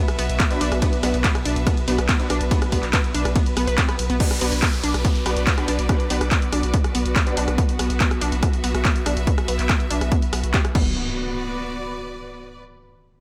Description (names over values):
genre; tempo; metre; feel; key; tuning
driving peak-time techno; 142 BPM; 4/4; straight; B minor; A4 = 440 Hz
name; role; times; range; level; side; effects
analog pluck; riff; 0.0-10.9 s; B3 to B4; -31 LUFS; equal; chorus, overdrive, sidechain pumping, delay
deep dark ambient pad; drone; 0.2-4.2 s; B2 to B3; -40 LUFS; equal; none
bright studio string section; texture; 0.0-12.6 s; B3 to E5; -32 LUFS; equal; sidechain pumping
techno drum kit; drums; 0.1-10.8 s; crash cymbal, handclaps, hi-hat, ride cymbal, rim click; -28 LUFS; equal; sidechain pumping on hats, sidechain pumping on cymbals
saturated sub bass; bass; 0.2-10.9 s; B1; -27 LUFS; equal; tube saturation, sidechain pumping, low-pass filter
electronic kick drum; drums; 0.4-10.8 s; none; -23 LUFS; equal; none
rave stab; stabs; 0.5-7.5 s; D4 to B4; -31 LUFS; equal; chorus, built-in reverb, sidechain pumping, delay
downlifter and impact; sound effects; 4.2-7.6, 10.8-12.4 s; none; -35 LUFS; equal; none
room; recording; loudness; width
light reverb; none; -21 LUFS; mono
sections
0.0-4.2 A section; 4.2-11.0 B section; 11.0-12.7 C section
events
drop 0.0-4.2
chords
0.0 Bm; 10.8 B5; 11.0 Bm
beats
0.40 | 0.82 1.24 1.67 2.09 | 2.51 2.93 3.36 3.78 | 4.20 4.62 5.05 5.47 | 5.89 6.31 6.74 7.16 | 7.58 8.01 8.43 8.85 | 9.27 9.70 10.12 10.54 | 10.96 11.38 11.81 12.23